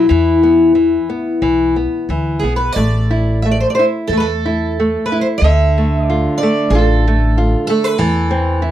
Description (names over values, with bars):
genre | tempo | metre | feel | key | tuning
fado-style ballad | 91 BPM | 4/4 | rubato | A minor | A4 = 440 Hz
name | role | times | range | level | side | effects
fingerpicked twelve-string acoustic guitar | melody | 0.0-8.7 s | E4 to E5 | -16 LUFS | left 1 dB | none
nylon-string guitar | accompaniment | 0.0-8.7 s | D3 to F4 | -18 LUFS | equal | none
upright bass | bass | 0.1-8.7 s | A1 to E2 | -16 LUFS | equal | none
room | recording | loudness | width
little or no reverb | dry, close 1970s-style studio recording | -12 LUFS | side -12 dB against mid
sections
0.0-8.7 A section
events
none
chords
0.1 E5; 2.8 A5; 5.4 Dm; 8.0 Am/E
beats
| 0.11 0.77 1.43 2.10 | 2.77 3.44 4.11 4.77 | 5.43 6.08 6.72 7.36 | 7.99 8.62